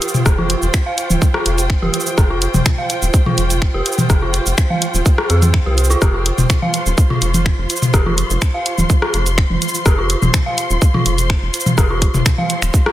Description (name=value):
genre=minimal techno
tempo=125 BPM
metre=4/4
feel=straight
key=unclear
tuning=A4 = 440 Hz
part: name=garage drum kit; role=drums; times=0.0-12.8 s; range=cabasa, finger snaps, hi-hat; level=-21 LUFS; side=equal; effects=small room ambience, soft clipping on snare
part: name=warm chamber string section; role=texture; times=0.0-12.9 s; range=F4 to C6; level=-24 LUFS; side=right 1 dB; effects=sidechain pumping
part: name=booming analog drum machine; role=percussion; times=0.1-12.9 s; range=congas, rim click, toms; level=-19 LUFS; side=left 1 dB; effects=small room ambience, soft clipping on snare
part: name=rubbery square bass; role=bass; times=0.3-12.7 s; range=Eb1 to F2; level=-18 LUFS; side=equal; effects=sidechain pumping
part: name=electronic kick drum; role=drums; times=0.3-12.8 s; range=none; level=-14 LUFS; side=equal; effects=small room ambience
part: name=dark detuned synth bell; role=riff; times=0.4-12.9 s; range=F4 to F5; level=-24 LUFS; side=equal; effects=chorus, sidechain pumping, tape echo
room=digital ambience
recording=dense, heavily limited modern master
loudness=-13 LUFS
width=side -14 dB against mid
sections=0.0-12.9 A section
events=none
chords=0.0 F5